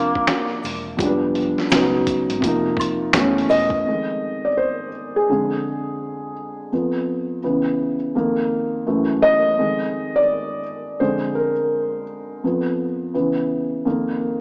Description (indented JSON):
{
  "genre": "lo-fi hip hop",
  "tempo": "84 BPM",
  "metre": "4/4",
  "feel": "swing 63% on 16ths",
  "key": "unclear",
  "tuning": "A4 = 441 Hz",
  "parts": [
    { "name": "breathy tenor saxophone", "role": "melody", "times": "0.0-0.6 s", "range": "Bb3", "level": "-27 LUFS", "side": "equal", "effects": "analog delay" },
    { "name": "felt-muted upright piano", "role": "accompaniment", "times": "0.0-14.4 s", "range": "F2 to Eb5", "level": "-22 LUFS", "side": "equal", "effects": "cassette tape" },
    { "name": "vintage muted fingered electric bass", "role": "bass", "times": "0.0-3.8 s", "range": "E1 to Db2", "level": "-36 LUFS", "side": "equal", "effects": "none" },
    { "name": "lo-fi sampler-style drum kit", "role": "drums", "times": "0.2-3.8 s", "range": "finger snaps, hi-hat, kick drum, snare drum", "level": "-25 LUFS", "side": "equal", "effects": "none" },
    { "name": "tube shaker and woodblock", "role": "percussion", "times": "0.3-3.7 s", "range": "none", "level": "-36 LUFS", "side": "equal", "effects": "none" }
  ],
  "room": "moderate echo chamber reverb, RT60 2.1 s",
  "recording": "worn, warbling old tape, cassette tape, warbly pitch drift, small speaker sound",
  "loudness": "-21 LUFS",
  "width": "mono",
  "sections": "0.0-3.8 A section; 3.8-14.4 B section",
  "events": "felt piano solo 3.8-14.4",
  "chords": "0.0 Bb/F; 1.0 G7/F; 1.7 Db5; 2.4 Cm7/F; 3.1 Gbm7; 3.8 Fm7; 5.3 Fm6; 6.7 N.C.; 7.4 Dbm7; 8.1 F7sus4; 8.8 Gbm7; 9.6 Fm7; 11.0 Bb7/F; 12.4 N.C.; 13.1 Dbm7; 13.8 F7sus4"
}